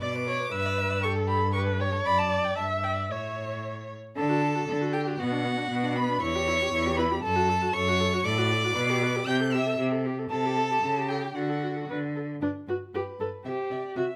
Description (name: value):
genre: quick classical-period movement for string quartet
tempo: 117 BPM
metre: 2/4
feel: straight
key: D major, G major from 8.3 s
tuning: A4 = 440 Hz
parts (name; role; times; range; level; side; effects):
- warm violin; melody; 0.0-14.2 s; B4 to G6; -32 LUFS; equal; none
- rich violin; second line; 0.0-14.0 s; F#4 to G5; -36 LUFS; equal; none
- warm viola; accompaniment; 0.0-14.0 s; B3 to E5; -33 LUFS; equal; none
- rich cello; bass; 0.0-14.0 s; E2 to D3; -32 LUFS; equal; none
room: light reverb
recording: none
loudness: -27 LUFS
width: mono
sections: 0.0-4.2 A section; 4.2-12.4 B section; 12.4-14.2 C section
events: none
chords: 0.0 Bm; 0.5 Em7/G; 1.0 A9/G; 2.1 D/F#; 2.6 Em/G; 3.1 A; 4.2 D; 5.2 Bm; 6.2 Em; 7.2 F#m; 8.3 D/A; 8.8 G/B; 9.3 Am7/C; 10.8 A7/C#; 11.4 D; 12.4 G; 13.5 C